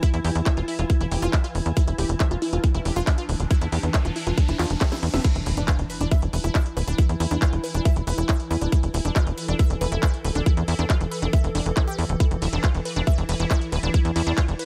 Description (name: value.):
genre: psychedelic trance.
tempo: 138 BPM.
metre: 4/4.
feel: straight.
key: unclear.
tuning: A4 = 440 Hz.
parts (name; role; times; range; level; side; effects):
swarming drone; sustained chords; 0.0-14.7 s; E3 to A4; -34 LUFS; equal; built-in reverb, sidechain pumping.
unison pluck; riff; 0.0-14.7 s; D4 to E5; -34 LUFS; equal; sidechain pumping, delay.
electronic kick drum; drums; 0.0-14.5 s; none; -22 LUFS; equal; overdrive.
techno drum kit; drums; 0.0-14.7 s; crash cymbal, handclaps, hi-hat, ride cymbal, snare drum; -34 LUFS; equal; none.
tight sequencer bass; bass; 0.1-14.5 s; D1 to E2; -27 LUFS; equal; tube saturation.
riser and impact; sound effects; 3.2-7.0 s; none; -40 LUFS; equal; none.
room: little or no reverb.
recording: none.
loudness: -23 LUFS.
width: mono.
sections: 0.0-5.2 A section; 5.2-14.7 B section.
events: riser 3.2-5.2; drum fill 4.8-5.2; drop 5.2-14.7; impact 5.2-7.0.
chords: 0.0 Dmadd9; 5.2 E5.